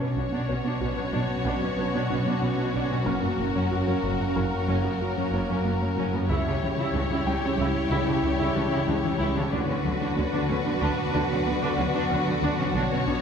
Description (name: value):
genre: cinematic, hybrid orchestral and electronic film score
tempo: 93 BPM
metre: 5/4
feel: straight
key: unclear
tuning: A4 = 440 Hz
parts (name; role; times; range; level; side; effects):
- warm symphonic violin section; melody; 0.0-13.2 s; A#4 to C#5; -34 LUFS; left 4 dB; none
- warm symphonic violin section; second line; 0.0-13.2 s; F#4 to G4; -33 LUFS; left 2 dB; none
- warm symphonic viola section; accompaniment; 0.0-13.1 s; B3 to E4; -33 LUFS; right 2 dB; none
- airy breathy pad; sustained chords; 0.3-13.2 s; D3 to D5; -32 LUFS; right 2 dB; chorus
- warm French horn section; sustained chords; 0.0-13.2 s; G3 to F#4; -34 LUFS; left 2 dB; none
- warbly dusty pluck; arpeggios; 0.0-13.2 s; C#3 to B4; -33 LUFS; left 2 dB; chorus, ping-pong delay
- rich symphonic cello section; bass; 0.0-13.2 s; F#2 to D3; -30 LUFS; right 2 dB; none
- clear grand piano; texture; 0.0-9.6 s; A#3 to G5; -38 LUFS; left 2 dB; none
- rich symphonic double bass section; bass; 0.2-13.1 s; F#1 to D2; -31 LUFS; right 1 dB; none
room: wet scoring stage reverb, RT60 1.5 s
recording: heard from further back in the room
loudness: -23 LUFS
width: side -7 dB against mid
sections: 0.0-13.2 A section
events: none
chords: 0.0 Bmadd9; 3.1 F#; 6.3 C#dim; 9.5 D6